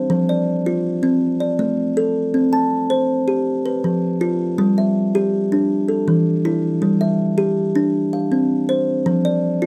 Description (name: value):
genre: southern african traditional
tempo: 107 BPM (dotted quarters)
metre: 12/8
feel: straight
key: G mixolydian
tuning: A4 = 441 Hz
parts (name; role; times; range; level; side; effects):
- kalimba; solo; 0.0-9.7 s; E3 to A5; -19 LUFS; equal; none
room: light reverb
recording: close, detailed microphones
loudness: -19 LUFS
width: mono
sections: 0.0-9.7 A section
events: none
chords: 0.1 F5; 1.2 Asus4; 2.3 C5; 3.5 N.C.; 4.6 G5; 5.7 Esus4; 6.8 G5; 8.0 Csus4; 9.1 F5